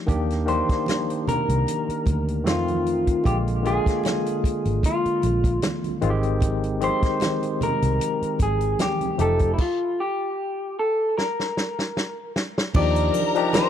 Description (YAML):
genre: lush 1970s-style soul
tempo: 76 BPM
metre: 4/4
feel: swing 54% on 16ths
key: Eb major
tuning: A4 = 440 Hz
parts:
  - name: barky tine electric piano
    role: accompaniment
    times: 0.0-13.7 s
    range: D3 to G4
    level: -26 LUFS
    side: left 2 dB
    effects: medium stereo tremolo
  - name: vintage muted fingered electric bass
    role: bass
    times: 0.1-13.1 s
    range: F1 to F2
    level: -24 LUFS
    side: right 1 dB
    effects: none
  - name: vintage drum kit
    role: drums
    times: 0.1-13.7 s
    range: crash cymbal, hi-hat, kick drum, snare drum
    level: -24 LUFS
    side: equal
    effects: none
  - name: congas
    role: percussion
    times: 0.1-13.7 s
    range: none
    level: -34 LUFS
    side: right 5 dB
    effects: none
  - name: electric guitar through a small old amp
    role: melody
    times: 0.5-13.7 s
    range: Fb4 to D5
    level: -25 LUFS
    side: left 1 dB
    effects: tape echo
  - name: dark studio string section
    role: second line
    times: 12.7-13.7 s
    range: Bb4 to Bb5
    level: -27 LUFS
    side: left 4 dB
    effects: none
  - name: triangle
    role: percussion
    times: 12.7-13.7 s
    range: none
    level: -41 LUFS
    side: left 12 dB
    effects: none
room: studio reverb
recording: dry, close 1970s-style studio recording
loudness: -21 LUFS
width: side -10 dB against mid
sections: 0.0-12.8 A section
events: stop 9.6-12.8; drum fill 11.2-12.8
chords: 0.1 Ebmaj7; 2.5 F7; 3.2 Bb7; 6.0 Abmaj7; 9.2 F9; 11.2 N.C.; 12.8 Ebmaj9